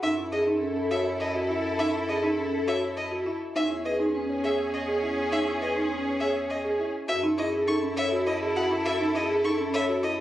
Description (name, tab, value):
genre	classical, minimalist pattern music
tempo	102 BPM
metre	3/4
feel	straight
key	F# dorian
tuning	A4 = 439 Hz
part	vibraphone with medium hard mallets	melody	0.0-10.2 s	G#4 to E5	-32 LUFS	left 2 dB	none
part	clear symphonic violin section	sustained chords	0.0-10.2 s	C#4 to A4	-32 LUFS	left 1 dB	none
part	clear violin	arpeggios	0.0-10.1 s	D#5 to C#6	-31 LUFS	left 1 dB	none
part	folk marimba with medium mallets	arpeggios	0.0-10.2 s	C#4 to C#5	-28 LUFS	right 1 dB	none
part	mellow bass clarinet	bass	0.0-10.2 s	E2 to F#2	-36 LUFS	left 1 dB	none
room	moderate large studio reverb, RT60 1.0 s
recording	recorded on a phone in the room, studio reverb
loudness	-24 LUFS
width	side -13 dB against mid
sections	0.0-7.1 A section; 7.1-10.2 A section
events	none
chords	0.0 F#m7; 3.6 E6; 7.1 F#m9